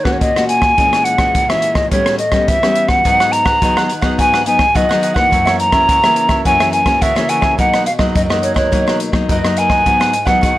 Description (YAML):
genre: samba and choro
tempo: 106 BPM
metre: 4/4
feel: straight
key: unclear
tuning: A4 = 440 Hz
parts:
  - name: hollow concert flute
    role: melody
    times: 0.0-10.6 s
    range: B4 to A#5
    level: -14 LUFS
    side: equal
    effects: none
  - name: nylon-string guitar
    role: accompaniment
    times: 0.0-10.6 s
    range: F#2 to F#4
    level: -19 LUFS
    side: left 2 dB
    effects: none
  - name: open jazz drum kit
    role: drums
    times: 0.1-10.6 s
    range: hi-hat, kick drum, rim click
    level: -18 LUFS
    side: equal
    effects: vintage 12-bit sampler grit
  - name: cavaquinho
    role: accompaniment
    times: 3.0-10.6 s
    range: D#4 to F#5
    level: -22 LUFS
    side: right 4 dB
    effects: none
room: light reverb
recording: dry, gritty hardware recording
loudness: -11 LUFS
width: side -15 dB against mid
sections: 0.0-10.6 A section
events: none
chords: 0.0 D#m7; 0.8 A#m7b5; 1.9 A9; 3.1 G#m7; 5.3 F#7; 7.6 Bmaj7; 9.9 G#m7